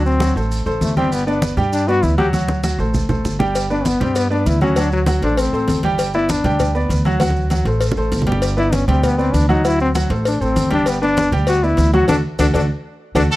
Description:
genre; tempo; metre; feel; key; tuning
latin, salsa; 197 BPM; 4/4; straight; G major; A4 = 440 Hz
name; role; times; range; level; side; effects
bright trombone; melody; 0.0-13.2 s; F#3 to G4; -19 LUFS; left 2 dB; none
clear baby grand piano; accompaniment; 0.0-13.3 s; F#3 to G5; -21 LUFS; right 1 dB; none
upright bass; bass; 0.0-13.3 s; G1 to G2; -19 LUFS; equal; none
congas; percussion; 0.1-13.4 s; none; -22 LUFS; equal; none
maracas; percussion; 0.1-13.4 s; none; -33 LUFS; right 3 dB; none
cowbell; percussion; 3.6-13.2 s; none; -25 LUFS; left 4 dB; none
bright trumpet section; melody; 13.3-13.4 s; F#4 to A4; -16 LUFS; right 2 dB; none
room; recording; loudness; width
little or no reverb; dry, close 1970s-style studio recording; -15 LUFS; side -17 dB against mid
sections
0.0-13.3 A section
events
trombone solo 0.0-13.3; drum fill 2.3-3.6, 7.2-8.4; band accent 12.1-13.3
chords
0.0 D7; 1.1 Gmaj7; 2.3 D7; 3.6 Gmaj7; 4.8 D7; 6.0 Gmaj7; 7.2 D7; 8.4 Gmaj7; 9.6 D7; 10.9 Gmaj7; 12.1 D

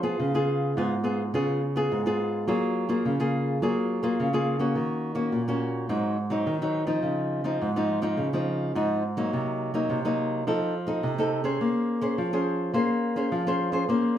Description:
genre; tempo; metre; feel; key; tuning
samba; 105 BPM; 4/4; straight; unclear; A4 = 443 Hz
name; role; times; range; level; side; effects
nylon-string guitar; solo; 0.0-14.2 s; Ab2 to C5; -24 LUFS; equal; none
room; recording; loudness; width
wet studio reverb, RT60 0.8 s; band playing live in one room; -24 LUFS; side -10 dB against mid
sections
0.0-14.2 A section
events
none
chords
0.2 Db7; 2.5 Gbmaj9; 4.8 Ebm7; 5.9 Ab7; 7.0 Dbmaj9; 9.3 Cm7b5; 10.5 F7; 11.6 Bbm9

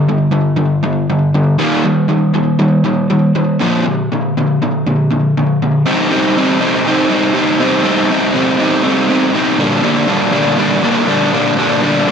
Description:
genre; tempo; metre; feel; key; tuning
rock; 120 BPM; 4/4; straight; C minor; A4 = 439 Hz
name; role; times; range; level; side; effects
overdriven semi-hollow guitar; solo; 0.0-12.1 s; G2 to Eb4; -11 LUFS; equal; spring reverb, slapback echo
room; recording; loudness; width
moderate studio ambience, RT60 0.5 s; none; -11 LUFS; side -7 dB against mid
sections
0.0-5.9 A section; 5.9-12.1 B section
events
none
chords
0.0 G5; 1.6 Eb; 3.6 Bb; 5.9 Cm; 9.6 Gm/Bb

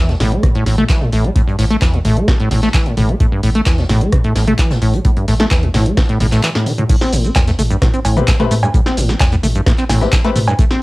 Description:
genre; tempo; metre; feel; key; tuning
acid house; 130 BPM; 4/4; straight; A minor; A4 = 439 Hz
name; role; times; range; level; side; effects
acid bass, saw; riff; 0.0-10.8 s; G2 to C4; -16 LUFS; equal; tube saturation, analog chorus, sidechain pumping, cassette tape, tape echo
warm sub bass; bass; 0.0-10.5 s; A1 to A2; -18 LUFS; equal; sidechain pumping
jazz brush drum kit; drums; 0.1-10.7 s; hi-hat, snare drum; -32 LUFS; left 1 dB; none
punchy analog drum machine; drums; 0.1-10.8 s; cowbell, crash cymbal, handclaps, hi-hat, rim click, shaker, snare drum, toms; -20 LUFS; equal; cassette tape
electronic kick drum; drums; 0.4-10.7 s; none; -14 LUFS; equal; cassette tape
clear concert grand piano; stabs; 8.2-10.4 s; C4 to B4; -21 LUFS; left 6 dB; cassette tape, tape echo
room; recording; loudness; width
light reverb; home recording on cassette; -12 LUFS; side -21 dB against mid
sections
0.0-6.9 A section; 6.9-10.8 B section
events
break 6.4-6.9; drop 6.9-10.8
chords
0.0 A5; 6.9 Am7

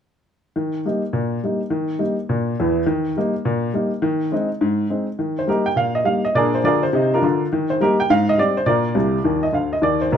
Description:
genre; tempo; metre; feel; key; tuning
jazz, stride piano; 207 BPM; 4/4; swing 65% on 8ths; Eb major; A4 = 443 Hz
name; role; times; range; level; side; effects
warm upright piano; solo; 0.6-10.2 s; Bb1 to G5; -17 LUFS; equal; none
room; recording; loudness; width
moderate studio reverb, RT60 0.7 s; none; -18 LUFS; side -8 dB against mid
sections
0.6-5.2 A section; 5.2-10.2 B section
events
upright piano fill 8.9-9.8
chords
0.6 Eb; 4.0 Ab/Eb; 5.2 Eb; 6.3 Bb7; 7.5 Eb; 8.1 Abmaj7; 8.7 Bb

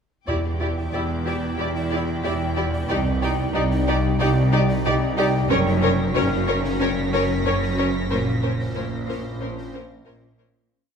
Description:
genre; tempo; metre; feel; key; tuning
cinematic, suspense film score; 92 BPM; 4/4; straight; unclear; A4 = 437 Hz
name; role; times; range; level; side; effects
warm symphonic violin section; melody; 0.3-10.5 s; B#4 to D5; -29 LUFS; left 2 dB; none
rich symphonic violin section; second line; 0.3-10.5 s; G4 to A#4; -29 LUFS; equal; none
rich studio viola section; accompaniment; 0.3-10.5 s; C#4 to E4; -29 LUFS; right 1 dB; none
pulsing gated texture; sustained chords; 0.8-10.7 s; C#4 to G5; -28 LUFS; left 2 dB; chorus, built-in reverb
rich symphonic cello section; bass; 0.3-10.6 s; C2 to A#2; -27 LUFS; right 2 dB; none
rich symphonic double bass section; bass; 0.3-10.6 s; E1 to C2; -27 LUFS; right 2 dB; none
overtone-sweeping drone; drone; 0.8-10.7 s; F#1 to E2; -29 LUFS; equal; chorus, built-in reverb
timpani; percussion; 0.3-1.2 s; E2; -32 LUFS; equal; none
rich studio violin section; texture; 0.3-10.4 s; G5 to B6; -38 LUFS; left 2 dB; none
concert harp; texture; 1.3-10.8 s; D5 to C#7; -37 LUFS; left 6 dB; none
room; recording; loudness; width
wet scoring stage reverb, RT60 2.0 s; minimal, uncompressed stereo recording; -20 LUFS; side -6 dB against mid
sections
0.3-10.7 A section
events
fade-out 8.1-10.7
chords
0.3 Em7; 2.9 Cmadd9; 5.5 F#; 8.1 A#madd9

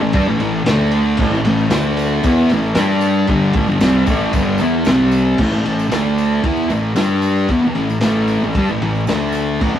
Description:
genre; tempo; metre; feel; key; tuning
garage rock duo or trio; 114 BPM; 4/4; straight; unclear; A4 = 436 Hz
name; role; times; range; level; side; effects
thick fuzz guitar; riff; 0.0-9.8 s; G2 to G4; -15 LUFS; equal; distortion
fuzz fingered electric bass; bass; 0.0-9.8 s; G1 to G2; -22 LUFS; left 1 dB; overdrive
crunchy breakbeat drum kit; drums; 0.1-9.7 s; crash cymbal, kick drum, ride cymbal, snare drum; -22 LUFS; equal; none
tambourine; percussion; 1.3-9.8 s; none; -42 LUFS; right 4 dB; none
room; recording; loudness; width
moderate small room reverb, RT60 0.5 s; rough rehearsal-room recording, tube saturation, vinyl crackle; -14 LUFS; side -10 dB against mid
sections
0.0-5.4 A section; 5.4-9.8 B section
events
none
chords
0.0 A5; 0.7 D5; 1.2 A5; 1.7 D5; 2.2 A5; 2.8 G5; 3.3 A5; 4.9 C5; 5.4 A5; 5.9 D5; 6.4 A5; 7.0 G5; 7.5 A5; 9.1 D5

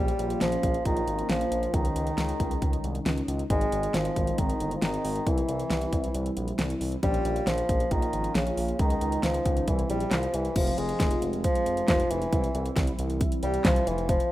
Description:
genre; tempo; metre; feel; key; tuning
synth-pop; 136 BPM; 4/4; straight; F harmonic minor from 10.6 s; A4 = 440 Hz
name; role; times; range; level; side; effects
mellow bassoon; melody; 0.0-14.3 s; Db3 to Ab3; -29 LUFS; equal; none
mellow synth brass; accompaniment; 0.0-14.3 s; Eb3 to F4; -33 LUFS; equal; chorus
smooth synth bass; bass; 0.0-14.2 s; F1 to Db2; -31 LUFS; equal; none
pop drum kit; drums; 0.1-14.3 s; crash cymbal, handclaps, hi-hat, kick drum, snare drum; -28 LUFS; equal; none
room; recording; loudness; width
light reverb; rough home demo mix; -24 LUFS; side -15 dB against mid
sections
0.0-10.6 A section; 10.6-14.3 B section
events
none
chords
0.0 Bbm; 1.7 Dbsus2; 3.5 Ab; 5.3 C; 7.0 Bbm; 8.8 Dbsus2; 9.7 C7; 10.6 Fm; 12.3 C

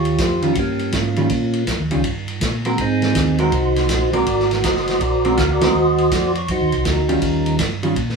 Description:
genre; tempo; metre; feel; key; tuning
soul jazz organ trio; 162 BPM; 4/4; swing 65% on 8ths; unclear; A4 = 438 Hz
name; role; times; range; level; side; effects
percussive tonewheel organ; melody; 0.0-7.6 s; Bb3 to F5; -19 LUFS; right 2 dB; slow rotary speaker
mellow tonewheel organ; bass; 0.0-8.2 s; Gb1 to Bb2; -22 LUFS; right 1 dB; chorus vibrato, slow rotary speaker
vintage drum kit; drums; 0.1-8.2 s; hi-hat, kick drum, ride cymbal, snare drum; -23 LUFS; equal; none
vintage hollow-body jazz guitar; accompaniment; 0.4-8.0 s; Eb3 to Bb4; -21 LUFS; right 1 dB; none
room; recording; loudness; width
wet small room ambience, RT60 0.5 s; heard from further back in the room; -16 LUFS; side -4 dB against mid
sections
0.0-8.2 A section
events
band accent 5.6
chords
0.0 Eb9; 2.8 Ab9; 7.2 Eb9

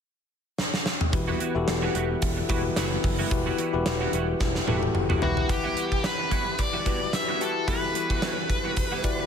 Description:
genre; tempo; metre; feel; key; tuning
1980s-style pop; 110 BPM; 4/4; swing 55% on 16ths; E minor; A4 = 440 Hz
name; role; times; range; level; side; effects
gated 80s drum kit; drums; 0.6-9.2 s; hi-hat, kick drum, snare drum, toms; -27 LUFS; equal; none
bell-like tine electric piano; accompaniment; 1.1-9.3 s; E3 to F#5; -29 LUFS; left 6 dB; fast stereo tremolo, shimmer reverb
warm analog pad; sustained chords; 1.1-5.5 s; E3 to F#5; -36 LUFS; right 5 dB; chorus, shimmer reverb
twelve-string electric guitar; riff; 1.1-9.2 s; G3 to F#4; -34 LUFS; right 6 dB; ensemble chorus, shimmer reverb
modern bright picked electric bass; bass; 1.1-5.4 s; E1 to F#1; -30 LUFS; equal; none
high-gain lead guitar; melody; 5.2-9.3 s; F#4 to E5; -28 LUFS; equal; distortion, shimmer reverb
room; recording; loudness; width
light reverb, small room ambience; none; -23 LUFS; side -7 dB against mid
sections
0.0-1.1 A section; 1.1-5.5 B section; 5.5-9.3 C section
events
drum fill 0.6-1.1, 4.4-5.5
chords
0.0 N.C.; 1.1 Emadd9

